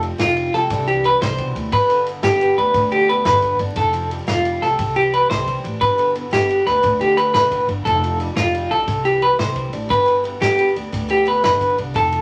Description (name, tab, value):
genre	highlife guitar band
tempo	117 BPM (dotted quarters)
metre	12/8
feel	straight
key	G mixolydian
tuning	A4 = 440 Hz
part	picked acoustic archtop guitar	accompaniment	0.0-12.2 s	F2 to E4	-33 LUFS	equal	none
part	upright bass	bass	0.0-12.2 s	F1 to D2	-29 LUFS	equal	none
part	vintage drum kit	drums	0.0-12.2 s	kick drum, ride cymbal, snare drum	-31 LUFS	equal	none
part	semi-hollow electric guitar	arpeggios	0.2-12.2 s	F4 to C5	-19 LUFS	equal	tremolo
part	shekere	percussion	0.2-12.1 s	none	-29 LUFS	equal	none
room	moderate studio ambience, RT60 0.4 s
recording	vinyl crackle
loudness	-18 LUFS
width	mono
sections	0.0-12.2 A section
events	none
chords	0.0 Fadd9; 0.7 Cadd9; 1.7 G; 3.8 Fadd9; 4.8 Cadd9; 5.8 G; 7.9 Fadd9; 8.9 Cadd9; 9.9 G